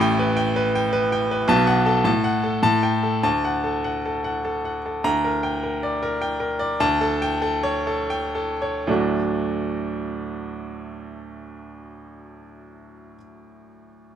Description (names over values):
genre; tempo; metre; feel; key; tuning
classical, virtuoso piano study; 76-108 BPM; 3/4; rubato; D major; A4 = 440 Hz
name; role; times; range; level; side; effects
clear baby grand piano; solo; 0.0-14.2 s; A1 to B5; -20 LUFS; equal; none
room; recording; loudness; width
light reverb; close, detailed microphones; -20 LUFS; side -9 dB against mid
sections
0.0-5.1 A section; 5.1-8.9 B section; 8.9-13.3 C section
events
slowing down 4.2-8.9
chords
0.0 Asus2; 1.5 B5; 2.1 F#m/A; 2.6 Gsus2/A; 3.3 D; 5.1 Gm/D; 6.8 A7/D; 8.9 D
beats
0.39 0.95 | 1.51 2.07 2.65 | 3.25 3.86 4.46 | 5.06 5.64 6.21 | 6.80 7.42 8.11 | 8.87 9.62 10.36 | 11.09 11.83 12.57